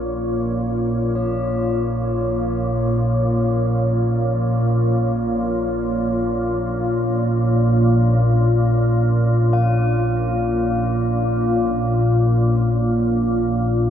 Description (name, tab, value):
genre	dark ambient drone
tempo	free time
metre	none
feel	none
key	unclear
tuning	A4 = 440 Hz
part	deep dark ambient pad	sustained chords	0.0-13.9 s	Bb3 to Db5	-22 LUFS	left 1 dB	chorus, built-in reverb
part	organ-like drone	drone	0.0-13.9 s	Bb1 to Bb2	-19 LUFS	equal	ensemble chorus, built-in reverb
part	quartz singing bowl	texture	0.0-13.9 s	Db4 to F5	-31 LUFS	left 1 dB	none
room	wet cathedral reverb, RT60 5.3 s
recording	none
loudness	-17 LUFS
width	side -9 dB against mid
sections	0.0-13.9 A section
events	fade-in on singing bowl 0.0-13.9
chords	0.0 Bbm